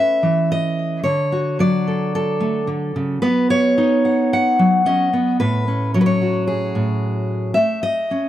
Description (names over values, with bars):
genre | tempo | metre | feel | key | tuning
folk, solo fingerstyle acoustic guitar | 110 BPM | 4/4 | straight | unclear | A4 = 439 Hz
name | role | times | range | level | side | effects
fingerpicked steel-string acoustic guitar | solo | 0.0-8.3 s | A2 to F#5 | -16 LUFS | equal | tape echo
room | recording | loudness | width
small room reverb | dry, close 1970s-style studio recording | -16 LUFS | side -12 dB against mid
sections
0.0-8.3 A section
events
none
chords
0.0 Aadd9; 1.0 Dmaj7; 3.2 Badd9; 5.4 F#madd9/A; 7.6 A